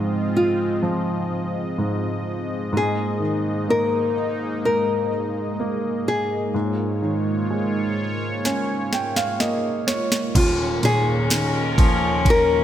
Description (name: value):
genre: pop ballad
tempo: 63 BPM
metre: 4/4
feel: straight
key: Ab major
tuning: A4 = 439 Hz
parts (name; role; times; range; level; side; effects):
- nylon-string guitar; melody; 0.0-12.6 s; F4 to Bb4; -22 LUFS; left 2 dB; none
- clear baby grand piano; accompaniment; 0.0-12.6 s; Eb1 to G5; -24 LUFS; right 1 dB; none
- sweeping resonant pad; sustained chords; 0.0-12.6 s; Eb2 to Eb5; -27 LUFS; equal; chorus
- smooth R&B drum kit; drums; 8.5-12.5 s; crash cymbal, kick drum, ride cymbal, snare drum; -22 LUFS; equal; none
- warm chamber cello section; second line; 10.3-12.6 s; Db4; -25 LUFS; left 3 dB; none
room: light reverb, small room ambience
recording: none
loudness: -20 LUFS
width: side -11 dB against mid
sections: 0.0-10.3 A section; 10.3-12.6 B section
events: grand piano fill 8.4-10.3; drum fill 8.4-10.3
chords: 0.0 Ab6; 2.7 Absus2; 6.5 Eb7sus4/Ab; 10.3 Ebsus2